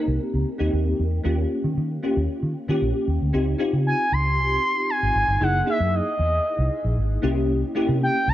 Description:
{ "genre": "polished 1980s jazz-funk pop", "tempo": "115 BPM", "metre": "4/4", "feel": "straight", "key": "unclear", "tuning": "A4 = 440 Hz", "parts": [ { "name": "bell-like FM electric piano", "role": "accompaniment", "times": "0.0-8.3 s", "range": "Bb3 to Bb4", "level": "-25 LUFS", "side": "left 1 dB", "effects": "ensemble chorus" }, { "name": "vintage muted fingered electric bass", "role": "bass", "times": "0.1-8.3 s", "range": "Gb1 to Eb3", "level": "-23 LUFS", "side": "equal", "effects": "none" }, { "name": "expressive portamento lead", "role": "melody", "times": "3.9-8.3 s", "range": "Eb5 to C6", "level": "-23 LUFS", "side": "equal", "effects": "chorus" } ], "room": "light reverb, digital ambience", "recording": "none", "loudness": "-20 LUFS", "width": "side -13 dB against mid", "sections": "0.0-3.3 A section; 3.3-8.3 B section", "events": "none", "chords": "0.0 Cm7; 1.2 Eb9; 3.3 Dbmaj9#11; 5.4 Gb13; 7.2 C7b9" }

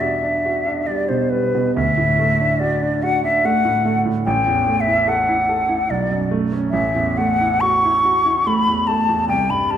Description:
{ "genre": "classical, impressionist duo for flute and grand piano", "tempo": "72 BPM", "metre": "3/4", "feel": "uneven beats, rubato", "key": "unclear", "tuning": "A4 = 443 Hz", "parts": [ { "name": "hollow concert flute", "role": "melody", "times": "0.0-9.8 s", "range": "B4 to C#6", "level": "-18 LUFS", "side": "left 2 dB", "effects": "none" }, { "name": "clear concert grand piano", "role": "accompaniment", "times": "0.0-9.8 s", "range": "A1 to A4", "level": "-20 LUFS", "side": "right 3 dB", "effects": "none" } ], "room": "wet recital hall reverb, RT60 1.5 s", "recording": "minimal, uncompressed stereo recording", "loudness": "-16 LUFS", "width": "side -9 dB against mid", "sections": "0.0-9.8 A section", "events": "none", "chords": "0.0 Gmaj7/E; 1.8 Dadd9; 4.3 A5; 5.9 Bm9; 6.7 A6" }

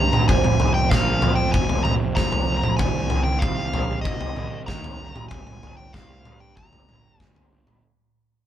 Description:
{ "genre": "quiet-loud alternative rock", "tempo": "96 BPM", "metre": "4/4", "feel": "straight", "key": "unclear", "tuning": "A4 = 440 Hz", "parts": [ { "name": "nasal lead guitar with a parked wah", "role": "melody", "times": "0.0-7.5 s", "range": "Eb5 to Bb5", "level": "-27 LUFS", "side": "left 2 dB", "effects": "overdrive" }, { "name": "fingerpicked steel-string acoustic guitar", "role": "arpeggios", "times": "0.0-7.8 s", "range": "F2 to G4", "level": "-29 LUFS", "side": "right 6 dB", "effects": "none" }, { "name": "fuzz picked electric bass", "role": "bass", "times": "0.0-7.8 s", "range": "F1 to G2", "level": "-28 LUFS", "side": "equal", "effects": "overdrive" }, { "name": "big rock drum kit", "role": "drums", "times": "0.1-7.8 s", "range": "kick drum, snare drum, toms", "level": "-22 LUFS", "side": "equal", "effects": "none" } ], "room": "light reverb", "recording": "band playing live in one room", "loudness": "-19 LUFS", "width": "side -11 dB against mid", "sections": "0.0-7.8 A section", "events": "fade-out 0.0-7.8", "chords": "0.3 Fsus4; 2.8 Cmadd9; 5.3 Gm" }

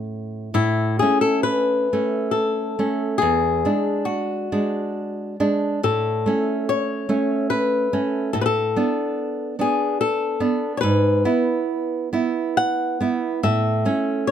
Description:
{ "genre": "romantic duo for nylon-string guitar and classical guitar", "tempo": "60-74 BPM", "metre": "3/4", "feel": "rubato", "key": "A major", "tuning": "A4 = 438 Hz", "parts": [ { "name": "flamenco guitar", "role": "melody", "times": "0.0-14.3 s", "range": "E4 to F#5", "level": "-22 LUFS", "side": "left 5 dB", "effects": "none" }, { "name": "nylon-string guitar", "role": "accompaniment", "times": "0.0-14.3 s", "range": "E2 to E4", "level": "-22 LUFS", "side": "right 3 dB", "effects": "none" } ], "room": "light reverb", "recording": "close, detailed microphones", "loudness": "-19 LUFS", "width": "side -9 dB against mid", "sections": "0.6-14.3 A section", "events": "none", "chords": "0.0 A; 3.2 E9; 5.8 A; 8.3 Bm7/A; 10.8 E/G#; 13.4 A" }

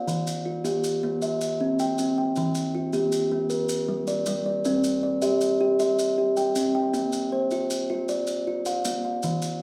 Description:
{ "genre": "southern african traditional, mbira-style interlocking cycle", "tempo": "105 BPM (dotted quarters)", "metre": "12/8", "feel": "straight", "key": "C equiheptatonic", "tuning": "A4 = 445 Hz", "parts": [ { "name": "kalimba", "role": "arpeggios", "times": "0.0-9.6 s", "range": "Eb3+43c to G5", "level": "-26 LUFS", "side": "equal", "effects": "none" }, { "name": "maracas", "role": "percussion", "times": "0.1-9.6 s", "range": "none", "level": "-39 LUFS", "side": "equal", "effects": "none" } ], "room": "wet large studio reverb, RT60 0.9 s", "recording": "band playing live in one room", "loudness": "-25 LUFS", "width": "mono", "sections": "0.0-9.6 A section", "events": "none", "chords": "0.1 Eb; 1.2 Cm; 2.4 Eb; 3.5 Gm; 4.6 Cm; 6.9 Bb" }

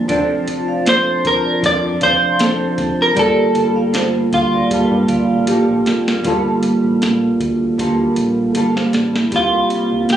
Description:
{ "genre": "indie pop, bedroom pop", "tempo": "78 BPM", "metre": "4/4", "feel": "swing 55% on 16ths", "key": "unclear", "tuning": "A4 = 440 Hz", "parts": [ { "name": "mellow tonewheel organ", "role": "accompaniment", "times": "0.0-10.2 s", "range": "F3 to A5", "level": "-18 LUFS", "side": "right 3 dB", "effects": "slow rotary speaker, cassette tape" }, { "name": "nylon-string guitar", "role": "accompaniment", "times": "0.0-10.2 s", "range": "C3 to A4", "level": "-21 LUFS", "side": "left 2 dB", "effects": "wide subtle chorus, vibrato effect" }, { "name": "vibraphone with medium hard mallets", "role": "second line", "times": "0.1-5.5 s", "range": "A4 to F5", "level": "-24 LUFS", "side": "right 3 dB", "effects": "wide subtle chorus, tape echo" }, { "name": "round analog bass", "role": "bass", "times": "0.1-10.2 s", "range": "F1 to G2", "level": "-25 LUFS", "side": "equal", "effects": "none" }, { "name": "soft vintage rhythm box", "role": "drums", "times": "0.1-10.2 s", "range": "hi-hat, kick drum, snare drum", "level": "-21 LUFS", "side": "equal", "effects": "none" }, { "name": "semi-hollow electric guitar", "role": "melody", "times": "0.9-10.2 s", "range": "F4 to D5", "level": "-16 LUFS", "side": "equal", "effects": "lush chorus, tape echo" } ], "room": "light reverb", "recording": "recorded on a phone in the room, studio reverb", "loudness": "-13 LUFS", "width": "side -10 dB against mid", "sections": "0.0-6.2 A section; 6.2-9.3 B section", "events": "drum fill 5.5-6.2, 7.8-9.3", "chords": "0.1 F6; 3.2 Gm9; 9.3 C7sus4" }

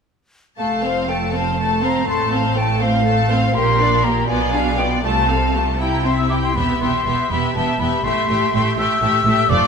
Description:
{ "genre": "classical, dramatic, fast romantic movement for symphony orchestra", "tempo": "81 BPM (dotted quarters)", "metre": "6/8", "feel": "rubato", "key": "F major", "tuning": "A4 = 440 Hz", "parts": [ { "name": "clear symphonic violin section", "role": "melody", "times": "0.6-9.7 s", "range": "Bb4 to A5", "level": "-24 LUFS", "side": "left 4 dB", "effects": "none" }, { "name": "concert flute", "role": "second line", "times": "0.6-9.7 s", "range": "F5 to E6", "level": "-21 LUFS", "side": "left 3 dB", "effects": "none" }, { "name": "rich symphonic violin section", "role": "second line", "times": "0.6-9.7 s", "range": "E4 to C5", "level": "-25 LUFS", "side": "left 2 dB", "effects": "none" }, { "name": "clear symphonic viola section", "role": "accompaniment", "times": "0.6-9.7 s", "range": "A3 to E4", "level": "-23 LUFS", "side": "right 2 dB", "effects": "none" }, { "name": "rich studio double bass section", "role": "bass", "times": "0.6-9.6 s", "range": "E1 to C2", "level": "-24 LUFS", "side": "right 3 dB", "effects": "none" }, { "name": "rich symphonic cello section", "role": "bass", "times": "0.6-9.6 s", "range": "E2 to C3", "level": "-24 LUFS", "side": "right 2 dB", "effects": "none" } ], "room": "moderate scoring stage reverb, RT60 1.9 s", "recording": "minimal, uncompressed stereo recording", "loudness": "-16 LUFS", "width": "side -6 dB against mid", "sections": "0.6-9.7 A section", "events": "none", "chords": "0.6 F; 2.1 F/A; 3.5 Gm/Bb; 4.3 Bdim7; 5.0 F/C; 5.8 C; 6.6 Em; 8.0 Am7" }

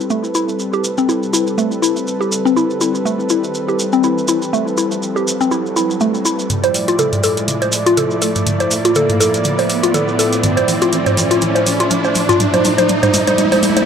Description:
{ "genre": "afro house", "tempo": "122 BPM", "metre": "4/4", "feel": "swing 56% on 16ths", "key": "A minor", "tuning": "A4 = 439 Hz", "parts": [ { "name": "warm analog pad", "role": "sustained chords", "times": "0.0-13.9 s", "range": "A2 to D5", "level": "-20 LUFS", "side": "equal", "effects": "chorus" }, { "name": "maracas", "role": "percussion", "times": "0.0-13.9 s", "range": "none", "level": "-23 LUFS", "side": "right 1 dB", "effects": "none" }, { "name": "riser and swell", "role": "sound effects", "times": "0.5-13.9 s", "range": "none", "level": "-22 LUFS", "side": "right 2 dB", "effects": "none" }, { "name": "mallet-like synth pluck", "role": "arpeggios", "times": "0.1-13.9 s", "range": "A3 to C5", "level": "-16 LUFS", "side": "left 1 dB", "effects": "chorus, phaser, tape echo" }, { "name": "afro-pop drum kit", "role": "drums", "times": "6.5-13.9 s", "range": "hi-hat, toms", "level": "-19 LUFS", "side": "equal", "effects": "none" } ], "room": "light reverb, digital ambience", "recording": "dry, gritty hardware recording", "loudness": "-13 LUFS", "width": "side -7 dB against mid", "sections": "0.0-13.9 A section", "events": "build-up 0.0-13.9; filter sweep on synth pluck 0.0-13.9; riser 0.5-13.9; drum fill 6.5-13.9; swell 13.4-13.9", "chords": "0.0 Am9; 6.5 Dmadd9/A" }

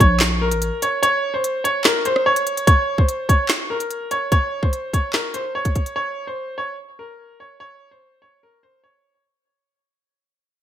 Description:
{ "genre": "hip hop, drill", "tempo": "146 BPM", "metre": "4/4", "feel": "half-time", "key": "Bb harmonic minor", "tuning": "A4 = 440 Hz", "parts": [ { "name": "bright upright piano", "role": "melody", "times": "0.0-9.2 s", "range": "Bb4 to Db5", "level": "-20 LUFS", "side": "equal", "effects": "low-pass filter, digital delay" }, { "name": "growling 808-style bass", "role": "bass", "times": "0.0-0.7 s", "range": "A1 to Bb1", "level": "-20 LUFS", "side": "equal", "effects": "none" }, { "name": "drill drum kit", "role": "drums", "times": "0.0-6.0 s", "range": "handclaps, hi-hat, kick drum, rim click, snare drum", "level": "-18 LUFS", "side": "equal", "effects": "gated reverb" } ], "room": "moderate plate reverb, RT60 1.4 s", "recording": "bright 1980s-style digital production", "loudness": "-18 LUFS", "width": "side -10 dB against mid", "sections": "0.0-2.7 A section; 2.7-9.2 B section", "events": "kick muted 1.0-2.7; fade-out 2.7-9.2", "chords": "0.0 Bbm; 2.7 N.C." }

